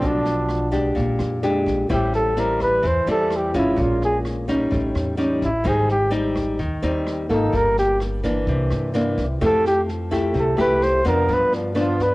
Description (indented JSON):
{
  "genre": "bossa nova",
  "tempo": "128 BPM",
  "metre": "4/4",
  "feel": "straight",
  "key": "unclear",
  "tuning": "A4 = 442 Hz",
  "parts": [
    { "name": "mellow flugelhorn", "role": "melody", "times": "0.0-12.1 s", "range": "D4 to C5", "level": "-20 LUFS", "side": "equal", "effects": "cassette tape" },
    { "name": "nylon-string guitar", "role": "accompaniment", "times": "0.0-12.1 s", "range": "G2 to A4", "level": "-22 LUFS", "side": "left 1 dB", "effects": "cassette tape" },
    { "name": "upright bass", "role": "bass", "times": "0.0-12.1 s", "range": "G1 to G2", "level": "-26 LUFS", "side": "equal", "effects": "transformer saturation" },
    { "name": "jazz brush drum kit", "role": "drums", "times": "0.0-12.1 s", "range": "kick drum, rim click, snare drum", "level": "-33 LUFS", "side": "equal", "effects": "cassette tape" }
  ],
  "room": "light reverb",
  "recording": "home recording on cassette, lossy compression artefacts",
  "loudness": "-18 LUFS",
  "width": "side -20 dB against mid",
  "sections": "0.0-12.1 A section",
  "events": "flugelhorn solo 0.0-12.1",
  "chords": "0.0 Bm7b5; 1.0 Bb6; 1.9 Am7; 3.8 Bbm7; 4.7 A7#11; 5.7 Abmaj7; 7.5 Gm9; 8.5 C9; 9.4 Fmaj9; 11.3 G7"
}